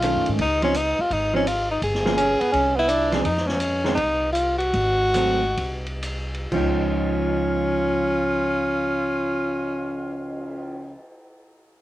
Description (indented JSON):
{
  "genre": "jazz, small-group swing and bop",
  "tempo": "117-168 BPM",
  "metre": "4/4",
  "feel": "swing 65% on 8ths",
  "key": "Db major",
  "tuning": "A4 = 440 Hz",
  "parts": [
    { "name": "clear tenor saxophone", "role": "melody", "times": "0.0-11.0 s", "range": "Db4 to Ab4", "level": "-23 LUFS", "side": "left 1 dB", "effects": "cassette tape" },
    { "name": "vintage hollow-body jazz guitar", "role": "accompaniment", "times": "0.0-11.0 s", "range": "Eb3 to Ab4", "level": "-26 LUFS", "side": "right 2 dB", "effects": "cassette tape" },
    { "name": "upright bass", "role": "bass", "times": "0.0-10.9 s", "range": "G1 to Ab2", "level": "-29 LUFS", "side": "equal", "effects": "none" },
    { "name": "open jazz drum kit", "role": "drums", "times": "0.0-10.5 s", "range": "crash cymbal, cymbal swell, hi-hat, kick drum, ride cymbal, snare drum", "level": "-32 LUFS", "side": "equal", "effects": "cassette tape" },
    { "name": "warm tenor saxophone", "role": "second line", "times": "2.2-3.2, 6.5-11.0 s", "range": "Cb4 to F4", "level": "-25 LUFS", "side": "right 1 dB", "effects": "cassette tape" }
  ],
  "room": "moderate booth ambience, RT60 0.2 s",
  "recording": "home recording on cassette",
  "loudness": "-20 LUFS",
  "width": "side -15 dB against mid",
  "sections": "0.0-3.2 A section; 3.2-6.5 B section; 6.5-10.6 C section",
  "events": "slowing down 3.2-6.5",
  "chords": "0.4 Dbmaj9; 1.8 Gm7b5; 2.5 F7(no3); 4.7 Ab7b9; 6.5 Dbadd9"
}